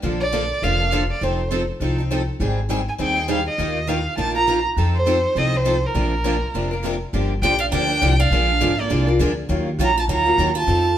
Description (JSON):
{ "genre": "acoustic string swing (jazz manouche)", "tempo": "203 BPM", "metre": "4/4", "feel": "swing 57% on 8ths", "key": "Bb major", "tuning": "A4 = 439 Hz", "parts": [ { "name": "picked steel-string acoustic guitar", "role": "accompaniment", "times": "0.0-10.9 s", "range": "C3 to Bb4", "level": "-26 LUFS", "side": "left 5 dB", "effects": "none" }, { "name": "picked steel-string acoustic guitar", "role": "accompaniment", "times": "0.0-10.9 s", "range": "C3 to Bb4", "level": "-26 LUFS", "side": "right 4 dB", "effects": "none" }, { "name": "upright bass", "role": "bass", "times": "0.0-11.0 s", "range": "F1 to F2", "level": "-22 LUFS", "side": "equal", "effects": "none" }, { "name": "warm violin", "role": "melody", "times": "0.2-11.0 s", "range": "Bb4 to Bb5", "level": "-21 LUFS", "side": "right 2 dB", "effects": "none" }, { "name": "picked steel-string acoustic guitar", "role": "second line", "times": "7.4-11.0 s", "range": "Bb3 to Gb4", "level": "-26 LUFS", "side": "right 6 dB", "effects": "none" } ], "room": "moderate stone room reverb, RT60 1.0 s", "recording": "band playing live in one room", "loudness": "-18 LUFS", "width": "side -10 dB against mid", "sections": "0.0-7.1 A section; 7.1-11.0 B section", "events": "none", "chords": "0.0 Bbmaj7; 1.2 F7; 2.4 Abmaj7; 3.6 Ebsus2; 4.8 F7; 5.9 Bbadd9; 7.1 Gm7; 8.3 Bb7; 9.5 Ebmadd9" }